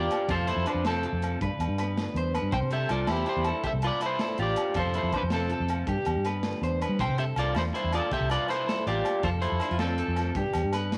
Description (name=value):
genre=highlife guitar band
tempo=108 BPM (dotted quarters)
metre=12/8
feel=straight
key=C major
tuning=A4 = 440 Hz
part: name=electric guitar at the edge of break-up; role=melody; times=0.0-10.3 s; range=C4 to G5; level=-32 LUFS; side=equal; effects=none
part: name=fingerpicked steel-string acoustic guitar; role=accompaniment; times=0.0-11.0 s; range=G2 to B4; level=-41 LUFS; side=equal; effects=none
part: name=electric guitar at the edge of break-up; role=arpeggios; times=0.0-11.0 s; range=G4 to C5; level=-36 LUFS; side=equal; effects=slapback echo
part: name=vintage muted fingered electric bass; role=bass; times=0.0-11.0 s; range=A1 to G3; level=-32 LUFS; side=equal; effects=none
part: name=crunchy breakbeat drum kit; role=drums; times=0.1-11.0 s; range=hi-hat, kick drum, snare drum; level=-39 LUFS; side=equal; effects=none
part: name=agogo bells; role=percussion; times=0.1-10.9 s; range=none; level=-39 LUFS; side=equal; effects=none
room=light reverb, small room ambience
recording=none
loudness=-28 LUFS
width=mono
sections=0.0-11.0 A section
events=none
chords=0.3 F; 1.4 G; 2.5 C; 4.8 F; 5.9 G; 7.0 C; 9.2 F; 10.4 G